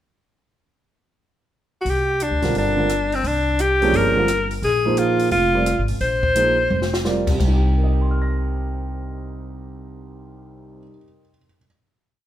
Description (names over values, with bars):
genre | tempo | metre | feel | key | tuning
modal jazz | 174 BPM | 4/4 | swing 64% on 8ths | C minor | A4 = 440 Hz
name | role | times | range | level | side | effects
bright alto saxophone | melody | 1.8-7.0 s | C4 to C5 | -19 LUFS | left 1 dB | none
upright bass | bass | 1.9-10.8 s | F1 to D2 | -23 LUFS | equal | none
compact cocktail drum kit | drums | 1.9-7.5 s | crash cymbal, hi-hat, kick drum, rim click, snare drum, toms | -28 LUFS | left 1 dB | none
dark upright piano | accompaniment | 2.4-11.7 s | C2 to Bb6 | -24 LUFS | right 3 dB | none
room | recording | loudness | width
moderate large studio reverb, RT60 1.3 s | minimal, uncompressed stereo recording | -17 LUFS | side -12 dB against mid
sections
0.5-1.9 pickup bar; 1.9-7.4 A section; 7.4-10.1 final chord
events
drum fill 6.7-7.0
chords
0.5 N.C.; 1.9 C9sus4; 4.6 Bb9sus4; 7.4 Cm